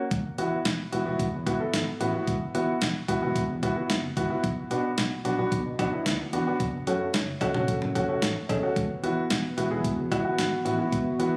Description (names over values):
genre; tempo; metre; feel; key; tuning
synth-pop; 111 BPM; 4/4; straight; unclear; A4 = 440 Hz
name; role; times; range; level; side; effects
warm baby grand piano; accompaniment; 0.0-11.4 s; A3 to A4; -30 LUFS; equal; none
sustaining fretless electric bass; bass; 0.1-11.3 s; E1 to B2; -34 LUFS; equal; none
clean 12-bit digital drum machine; drums; 0.1-11.3 s; cowbell, hi-hat, kick drum, snare drum, toms; -33 LUFS; equal; none
chorused pulse-width pad; sustained chords; 8.8-11.4 s; E3 to F#4; -33 LUFS; equal; none
room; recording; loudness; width
moderate lush hall reverb, RT60 2.1 s; recorded on a phone in the room, club reverb; -27 LUFS; mono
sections
0.1-11.4 A section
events
none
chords
0.1 Esus2; 4.4 Bm; 6.6 F#m; 8.8 Esus2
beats
| 0.11 0.66 1.20 1.74 | 2.28 2.82 3.36 3.90 | 4.44 4.98 5.52 6.06 | 6.60 7.14 7.68 8.22 | 8.76 9.30 9.84 10.38 | 10.93